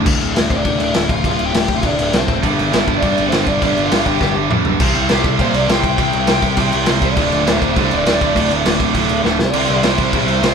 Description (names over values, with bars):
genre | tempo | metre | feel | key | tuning
punk rock | 202 BPM | 4/4 | straight | D minor | A4 = 440 Hz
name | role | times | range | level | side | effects
distorted electric guitar | riff | 0.0-0.1, 2.4-10.5 s | D2 to C4 | -19 LUFS | right 9 dB | overdrive
overdriven electric guitar | riff | 0.0-10.5 s | D2 to C4 | -22 LUFS | left 10 dB | none
fuzz picked electric bass | bass | 0.0-10.5 s | D1 to Bb2 | -21 LUFS | equal | overdrive
raw garage drum kit | drums | 0.1-10.5 s | crash cymbal, kick drum, snare drum, toms | -17 LUFS | equal | none
bluesy overdriven lead guitar | melody | 0.5-10.5 s | C4 to G5 | -21 LUFS | left 1 dB | distortion, tape echo
room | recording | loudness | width
light reverb | band playing live in one room | -13 LUFS | side -6 dB against mid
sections
0.1-4.8 A section; 4.8-10.5 B section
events
drum fill 4.2-4.8, 9.2; lead electric guitar solo 4.8-10.5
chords
0.1 Dm; 2.4 G5; 4.8 C5; 7.2 D5; 9.4 C